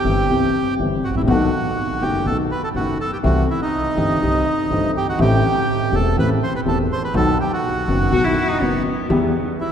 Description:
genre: tango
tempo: 123 BPM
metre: 4/4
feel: rubato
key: unclear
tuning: A4 = 440 Hz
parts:
  - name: bandoneon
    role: melody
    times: 0.0-9.7 s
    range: D#4 to C5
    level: -22 LUFS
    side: right 2 dB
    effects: none
  - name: dark upright piano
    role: accompaniment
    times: 0.0-9.3 s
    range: E1 to G4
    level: -20 LUFS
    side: left 2 dB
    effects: none
  - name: upright bass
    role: bass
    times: 0.0-9.3 s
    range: E1 to E2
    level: -23 LUFS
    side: right 1 dB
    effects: none
  - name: warm cello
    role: second line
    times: 8.1-9.5 s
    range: B3 to F#4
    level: -22 LUFS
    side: left 3 dB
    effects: none
room: wet cathedral reverb, RT60 4.5 s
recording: recorded in a church or concert hall, lossy compression artefacts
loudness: -16 LUFS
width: side -8 dB against mid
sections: 0.0-9.7 A section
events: none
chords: 0.0 Cmaj7; 1.3 B7; 3.2 C6; 5.2 Am7; 7.1 B; 9.1 Em

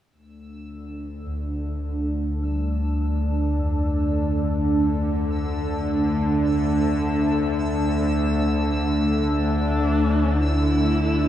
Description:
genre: dark ambient drone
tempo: 52 BPM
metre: 4/4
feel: straight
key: D minor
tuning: A4 = 440 Hz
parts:
  - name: deep dark ambient pad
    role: sustained chords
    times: 1.5-11.3 s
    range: D4 to E5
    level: -27 LUFS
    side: right 2 dB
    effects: chorus, built-in reverb
  - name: bowed-like drone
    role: drone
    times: 0.4-11.3 s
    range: D2 to D3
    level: -22 LUFS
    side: left 1 dB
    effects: built-in reverb
  - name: bubbling stepped-filter texture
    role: texture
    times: 0.1-11.3 s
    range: E6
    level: -37 LUFS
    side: left 2 dB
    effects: chorus, built-in reverb
  - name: gamelan-type bossed gongs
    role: arpeggios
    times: 1.3-10.4 s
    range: D2 to G3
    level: -31 LUFS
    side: left 1 dB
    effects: none
  - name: dark horsehead fiddle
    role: melody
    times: 9.3-11.3 s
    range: D4 to E4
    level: -26 LUFS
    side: equal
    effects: none
room: wet cathedral reverb, RT60 6.6 s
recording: in a vast, echoing space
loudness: -20 LUFS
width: side -11 dB against mid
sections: 0.1-11.3 A section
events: fade-in on synth texture 0.1-11.3; fade-in on kettle gongs 0.1-11.3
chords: 0.1 Dmadd9

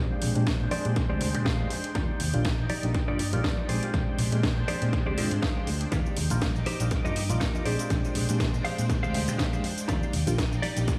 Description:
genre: filtered disco house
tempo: 121 BPM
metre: 4/4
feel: swing 55% on 16ths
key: Bb mixolydian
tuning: A4 = 440 Hz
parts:
  - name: reed electric piano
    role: accompaniment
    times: 0.0-11.0 s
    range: G3 to G5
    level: -37 LUFS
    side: equal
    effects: overdrive, fast tremolo, phaser, sidechain pumping, low-pass filter, dub echo
  - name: string machine, full ensemble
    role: sustained chords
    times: 0.1-11.0 s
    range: Ab3 to D6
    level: -39 LUFS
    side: equal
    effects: ensemble chorus, sidechain pumping, low-pass filter
  - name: direct-recorded clean electric guitar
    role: riff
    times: 0.0-10.8 s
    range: Eb4 to F5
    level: -38 LUFS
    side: equal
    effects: sidechain pumping, low-pass filter, dub echo
  - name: fingered electric bass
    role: bass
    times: 0.0-10.9 s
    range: Bb1 to Bb2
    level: -31 LUFS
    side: equal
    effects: tube saturation, sidechain pumping, low-pass filter
  - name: tambourine and congas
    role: percussion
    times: 0.1-11.0 s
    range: none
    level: -41 LUFS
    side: equal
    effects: none
  - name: house drum kit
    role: drums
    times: 0.2-11.0 s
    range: hi-hat, shaker, snare drum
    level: -37 LUFS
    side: equal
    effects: overdrive, sidechain pumping on hats, sidechain pumping on perc, dub echo
  - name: electronic kick drum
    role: drums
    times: 0.5-11.0 s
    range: none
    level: -31 LUFS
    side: equal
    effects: overdrive
room: light reverb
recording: echo-heavy mix, studio reverb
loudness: -27 LUFS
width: mono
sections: 0.0-11.0 A section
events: filter sweep 0.0-11.0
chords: 0.0 Bb13; 2.0 Ebmaj7; 3.7 Bb13; 5.9 Ebmaj7; 7.7 Bb13; 9.9 Ebmaj7

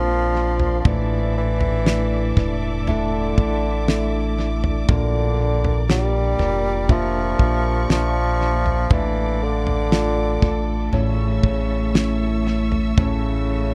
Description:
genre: pop ballad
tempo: 59 BPM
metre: 4/4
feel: straight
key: unclear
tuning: A4 = 440 Hz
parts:
  - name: warm bassoon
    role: melody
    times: 0.0-13.7 s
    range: C#3 to G3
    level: -27 LUFS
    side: equal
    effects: tape echo
  - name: mellow tine electric piano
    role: accompaniment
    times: 0.0-13.7 s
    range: A2 to F5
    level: -27 LUFS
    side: equal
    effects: tape echo
  - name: dark studio string section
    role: sustained chords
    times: 0.0-13.7 s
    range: A4 to E6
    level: -35 LUFS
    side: equal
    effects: none
  - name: picked steel-string acoustic guitar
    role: arpeggios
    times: 0.0-13.7 s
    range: A2 to Bb4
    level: -35 LUFS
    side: equal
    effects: none
  - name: sub bass with octave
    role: bass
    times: 0.0-13.7 s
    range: E1 to Bb1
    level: -26 LUFS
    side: equal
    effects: none
  - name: damped 70s drum kit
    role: drums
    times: 0.6-13.2 s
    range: kick drum, snare drum, toms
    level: -22 LUFS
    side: equal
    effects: none
room: small room ambience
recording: echo-heavy mix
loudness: -20 LUFS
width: mono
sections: 0.0-13.7 A section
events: none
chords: 0.0 Bbadd9; 0.8 Asus4; 4.9 Bb; 8.9 Dm/A; 10.9 A

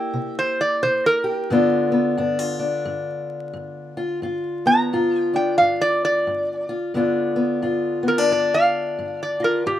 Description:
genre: acoustic country blues, solo or duo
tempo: 88 BPM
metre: 4/4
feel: swing 60% on 8ths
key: G mixolydian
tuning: A4 = 440 Hz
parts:
  - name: metal-body resonator slide guitar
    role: melody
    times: 0.0-9.8 s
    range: G4 to Bb5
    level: -20 LUFS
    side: right 1 dB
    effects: none
  - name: fingerpicked steel-string acoustic guitar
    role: accompaniment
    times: 0.0-9.8 s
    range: G2 to G4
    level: -21 LUFS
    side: left 2 dB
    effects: none
room: light reverb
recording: rough home demo mix, vinyl crackle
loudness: -18 LUFS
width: side -12 dB against mid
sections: 0.0-6.9 A section; 6.9-9.8 B section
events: resonator guitar played with a steel bar solo 0.0-6.9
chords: 0.0 C7; 1.5 G7

